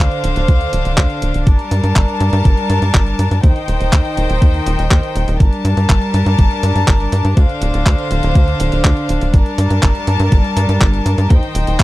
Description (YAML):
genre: italo disco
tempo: 122 BPM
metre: 4/4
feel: straight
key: G minor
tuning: A4 = 438 Hz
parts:
  - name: rich chamber string section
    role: sustained chords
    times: 0.0-11.8 s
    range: D3 to A5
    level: -18 LUFS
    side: left 1 dB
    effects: none
  - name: tight sequencer bass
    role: bass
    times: 0.0-11.8 s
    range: D1 to G2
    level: -16 LUFS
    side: equal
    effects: none
  - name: clean 12-bit digital drum machine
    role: drums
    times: 0.1-11.8 s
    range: handclaps, hi-hat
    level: -21 LUFS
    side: equal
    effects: none
  - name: electronic kick drum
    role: drums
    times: 0.5-11.8 s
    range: none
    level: -12 LUFS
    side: equal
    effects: none
room: little or no reverb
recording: dry, close 1970s-style studio recording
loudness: -12 LUFS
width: side -17 dB against mid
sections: 0.0-11.8 A section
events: none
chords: 0.0 Dm7; 1.5 Gmadd9; 3.4 Eb6; 5.4 Gmadd9; 7.4 Dm7; 9.3 Gmadd9; 11.3 Eb6